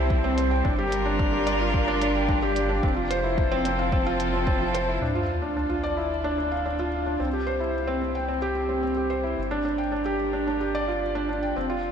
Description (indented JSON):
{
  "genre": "piano and strings electronica",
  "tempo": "110 BPM",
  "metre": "4/4",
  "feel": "straight",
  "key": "unclear",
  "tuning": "A4 = 440 Hz",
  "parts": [
    { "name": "rich string quartet", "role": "sustained chords", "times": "0.0-11.9 s", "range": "F3 to Bb4", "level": "-32 LUFS", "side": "right 1 dB", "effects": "shimmer reverb" },
    { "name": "felt-muted upright piano", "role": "riff", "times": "0.0-11.9 s", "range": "C4 to G5", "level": "-25 LUFS", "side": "equal", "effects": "ping-pong delay, shimmer reverb" },
    { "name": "round analog bass", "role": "bass", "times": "0.0-11.9 s", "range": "F1 to D2", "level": "-31 LUFS", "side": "equal", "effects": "sidechain pumping" },
    { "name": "electronic kick drum", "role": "drums", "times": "0.1-4.6 s", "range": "none", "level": "-26 LUFS", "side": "equal", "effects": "none" },
    { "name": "electronic hi-hat", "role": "drums", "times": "0.4-4.9 s", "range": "none", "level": "-40 LUFS", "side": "right 2 dB", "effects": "low-pass filter on hats, low-pass filter on room" },
    { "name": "sub drop", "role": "sound effects", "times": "5.0-7.2 s", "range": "none", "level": "-34 LUFS", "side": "equal", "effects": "none" }
  ],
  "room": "wet lush hall reverb, RT60 1.7 s",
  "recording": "dreamy mix soaked in reverb",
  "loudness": "-23 LUFS",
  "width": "side -7 dB against mid",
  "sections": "0.0-5.0 A section; 5.0-11.9 B section",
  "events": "impact 5.0-7.2",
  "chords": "0.0 C6; 0.7 Gm7; 2.8 Fmaj7; 5.0 Dmadd9; 7.2 C6; 9.4 Gm7"
}